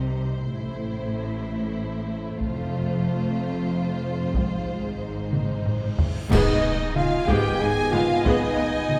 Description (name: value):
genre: cinematic, epic orchestral film score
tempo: 93 BPM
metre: 3/4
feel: straight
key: unclear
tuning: A4 = 440 Hz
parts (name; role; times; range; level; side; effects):
- warm symphonic violin section; melody; 0.0-9.0 s; C5 to Ab5; -36 LUFS; equal; none
- warm symphonic violin section; second line; 0.0-9.0 s; Eb4 to Ab5; -37 LUFS; equal; none
- warm studio viola section; accompaniment; 0.0-8.6 s; G3 to Ab4; -33 LUFS; equal; none
- dark French horn section; sustained chords; 0.0-9.0 s; C4 to C5; -34 LUFS; equal; none
- mellow trombone section; sustained chords; 0.0-9.0 s; Eb3 to Cb4; -38 LUFS; equal; none
- warm symphonic cello section; bass; 0.0-8.3 s; F2 to C3; -33 LUFS; equal; none
- warm symphonic double bass section; bass; 0.0-8.3 s; F1 to C2; -32 LUFS; equal; none
- taiko ensemble; drums; 2.4-9.0 s; none; -29 LUFS; equal; none
- cymbal swell, clash cymbals and concert bass drum; percussion; 2.4-7.6 s; none; -33 LUFS; equal; none
- reverse cymbal and impact; sound effects; 6.0-8.2 s; none; -40 LUFS; equal; none
- large flute ensemble; second line; 6.3-9.0 s; Eb5 to Ab5; -33 LUFS; equal; none
- mellow trumpet; stabs; 6.3-9.0 s; Eb4 to Ab4; -33 LUFS; equal; none
room: wet concert hall reverb, RT60 1.7 s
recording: recorded in a church or concert hall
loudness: -24 LUFS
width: mono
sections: 0.0-6.3 A section; 6.3-9.0 B section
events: drum fill 5.3-6.3; reverse cymbal 6.0-6.3; band accent 6.3-7.0; impact 6.3-8.2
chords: 0.5 Am; 2.4 F; 4.3 Ab; 6.3 Abm